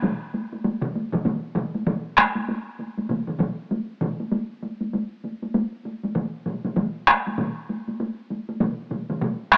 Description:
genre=japanese traditional, taiko drum ensemble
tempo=98 BPM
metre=4/4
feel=swing 60% on 16ths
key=none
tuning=none
part: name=taiko ensemble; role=percussion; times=0.0-9.6 s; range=none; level=-26 LUFS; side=equal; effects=none
part: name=taiko ensemble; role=percussion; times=0.0-9.6 s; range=none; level=-25 LUFS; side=equal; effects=none
part: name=taiko ensemble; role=percussion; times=0.0-9.6 s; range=none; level=-24 LUFS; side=equal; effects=none
room=light reverb, small room ambience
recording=home recording on cassette, AM radio sound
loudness=-23 LUFS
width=side -32 dB against mid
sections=0.0-9.6 A section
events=none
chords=none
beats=0.04 | 0.65 1.26 1.87 2.48 | 3.10 3.71 4.32 4.93 | 5.54 6.16 6.77 7.38 | 7.99 8.60 9.21

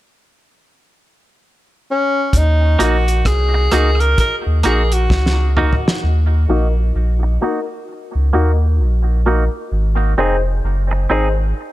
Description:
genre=dub reggae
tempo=65 BPM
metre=4/4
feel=swing 60% on 16ths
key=Eb dorian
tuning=A4 = 440 Hz
part: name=clear tenor saxophone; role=melody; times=1.9-5.6 s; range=Db4 to Bb4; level=-20 LUFS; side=equal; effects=tape echo
part: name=warm sub bass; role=bass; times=2.3-11.5 s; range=F1 to Eb2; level=-15 LUFS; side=equal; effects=none
part: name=cloth-damped thuddy drum kit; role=drums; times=2.3-6.1 s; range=hi-hat, kick drum, rim click, snare drum, toms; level=-19 LUFS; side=equal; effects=none
part: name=semi-hollow electric guitar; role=accompaniment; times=2.8-11.3 s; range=Bb3 to Ab4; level=-23 LUFS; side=right 4 dB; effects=low-pass filter, tape echo
part: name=dark upright piano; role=stabs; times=2.8-11.3 s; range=Eb4 to C5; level=-23 LUFS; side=left 5 dB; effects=low-pass filter, tape echo
room=small room ambience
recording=none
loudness=-14 LUFS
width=side -16 dB against mid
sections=0.0-2.3 A section; 2.3-6.0 B section; 6.0-11.7 C section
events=drum fill 5.1-6.0; filter sweep 6.0-11.7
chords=0.0 N.C.; 2.3 Ebm; 9.7 Ab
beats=0.48 1.41 | 2.33 3.25 4.18 5.10 | 6.02 6.94 7.87 8.79 | 9.71 10.63

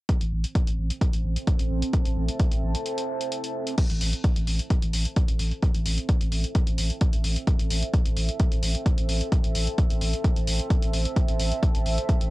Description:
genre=driving peak-time techno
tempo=130 BPM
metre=4/4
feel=straight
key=A minor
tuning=A4 = 440 Hz
part: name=electronic kick drum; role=drums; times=0.1-12.2 s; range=none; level=-22 LUFS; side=equal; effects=cassette tape
part: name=punchy analog drum machine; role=drums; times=0.1-12.3 s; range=crash cymbal, hi-hat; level=-33 LUFS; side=left 1 dB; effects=cassette tape
part: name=deep dark ambient pad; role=texture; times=0.7-12.3 s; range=C4 to A5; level=-33 LUFS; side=right 2 dB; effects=chorus, built-in reverb, sidechain pumping, cassette tape
part: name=saturated sub bass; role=bass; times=0.2-12.3 s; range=A1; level=-26 LUFS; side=equal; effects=overdrive, sidechain pumping, low-pass filter
room=little or no reverb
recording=home recording on cassette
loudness=-22 LUFS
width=side -19 dB against mid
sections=0.1-3.8 A section; 3.8-12.3 B section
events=break 2.9-3.8; fade-in on ambient pad 3.8-12.3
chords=0.1 Am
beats=| 0.09 0.55 1.01 1.47 | 1.94 2.40 2.86 3.32 | 3.78 4.24 4.70 5.17 | 5.63 6.09 6.55 7.01 | 7.47 7.93 8.40 8.86 | 9.32 9.78 10.24 10.70 | 11.17 11.63 12.09

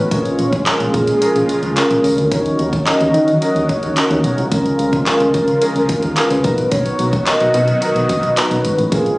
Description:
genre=dance-pop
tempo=109 BPM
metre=4/4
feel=straight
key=unclear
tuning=A4 = 440 Hz
part: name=mellow horn-like synth lead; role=melody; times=0.0-9.2 s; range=Ab4 to Eb5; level=-18 LUFS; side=equal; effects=chorus, digital delay
part: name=filtered supersaw swell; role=sustained chords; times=0.0-9.2 s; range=Db3 to Gb4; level=-22 LUFS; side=equal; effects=sidechain pumping
part: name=solid FM bass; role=bass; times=0.0-9.1 s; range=Ab1 to Eb3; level=-19 LUFS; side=equal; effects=sidechain pumping
part: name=warm baby grand piano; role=accompaniment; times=0.1-9.2 s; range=B3 to A#5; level=-21 LUFS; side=equal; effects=sidechain pumping
part: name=house drum kit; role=drums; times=0.1-9.2 s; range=handclaps, hi-hat, kick drum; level=-20 LUFS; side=equal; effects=none
room=light reverb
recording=recorded on a phone in the room, studio reverb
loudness=-13 LUFS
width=side -22 dB against mid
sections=0.0-9.2 A section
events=kick muted 1.2-2.3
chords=0.1 Bbm7; 2.3 Ebm7; 4.5 Db6; 6.4 Bmaj7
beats=| 0.11 0.66 1.21 1.76 | 2.31 2.87 3.42 3.97 | 4.52 5.07 5.62 6.17 | 6.72 7.27 7.82 8.37 | 8.92

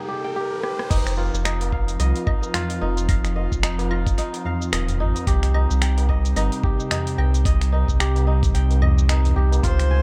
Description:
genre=organic downtempo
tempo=110 BPM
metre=4/4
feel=swing 58% on 16ths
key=unclear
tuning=A4 = 442 Hz
part: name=kora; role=arpeggios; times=0.0-10.0 s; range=Eb4 to Ab5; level=-31 LUFS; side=equal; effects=dub echo
part: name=riser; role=sound effects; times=0.0-0.9 s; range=none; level=-34 LUFS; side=equal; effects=none
part: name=afro-pop drum kit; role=drums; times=0.6-9.9 s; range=claves, crash cymbal, finger snaps, hi-hat, rim click, shaker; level=-31 LUFS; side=equal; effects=tape echo
part: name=airy breathy pad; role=sustained chords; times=0.9-10.0 s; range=C3 to F4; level=-32 LUFS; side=equal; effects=chorus, sidechain pumping
part: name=warm sub bass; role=bass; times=0.9-10.0 s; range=Eb1 to Db2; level=-22 LUFS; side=equal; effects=tube saturation, sidechain pumping
part: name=electronic kick drum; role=drums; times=0.9-9.8 s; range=none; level=-24 LUFS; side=equal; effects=none
part: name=tabla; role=percussion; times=1.2-10.0 s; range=none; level=-34 LUFS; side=equal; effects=tape echo
part: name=rich kamancheh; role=melody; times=9.6-10.0 s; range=C5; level=-29 LUFS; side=equal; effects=none
room=light reverb, digital ambience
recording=echo-heavy mix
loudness=-21 LUFS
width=mono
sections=0.9-10.0 A section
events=break 0.0-0.9; riser 0.0-0.9; drum fill 0.6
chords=0.0 Cm (rootless); 0.9 F7(no3); 5.3 Cm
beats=0.36 | 0.91 1.45 2.00 2.54 | 3.09 3.63 4.18 4.73 | 5.27 5.82 6.36 6.91 | 7.45 8.00 8.54 9.09 | 9.63

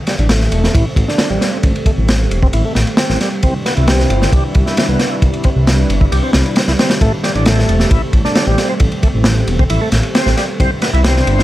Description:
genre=breakbeat, breaks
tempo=134 BPM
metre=4/4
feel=straight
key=A minor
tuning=A4 = 439 Hz
part: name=lush unison pad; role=sustained chords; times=0.0-11.4 s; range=C3 to B4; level=-22 LUFS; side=right 1 dB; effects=chorus, sidechain pumping
part: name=bright tonewheel organ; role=riff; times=0.1-11.4 s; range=G3 to G4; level=-20 LUFS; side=equal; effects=overdrive, chorus vibrato, slow rotary speaker, low-pass filter, digital delay
part: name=crunchy breakbeat drum kit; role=drums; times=0.1-11.4 s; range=kick drum, ride cymbal, snare drum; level=-15 LUFS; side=equal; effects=none
part: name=detuned saw bass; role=bass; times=0.2-11.4 s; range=E1 to C2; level=-15 LUFS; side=equal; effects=none
room=studio reverb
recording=vinyl crackle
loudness=-11 LUFS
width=side -15 dB against mid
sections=0.0-11.4 A section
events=filter sweep on tonewheel organ 0.0-11.4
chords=0.0 Am7; 3.4 Cmaj7; 7.0 Am7; 10.6 Cmaj7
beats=0.30 0.74 1.19 | 1.64 2.09 2.54 2.98 | 3.43 3.88 4.33 4.78 | 5.22 5.67 6.12 6.57 | 7.01 7.46 7.91 8.36 | 8.80 9.25 9.70 10.15 | 10.60 11.04

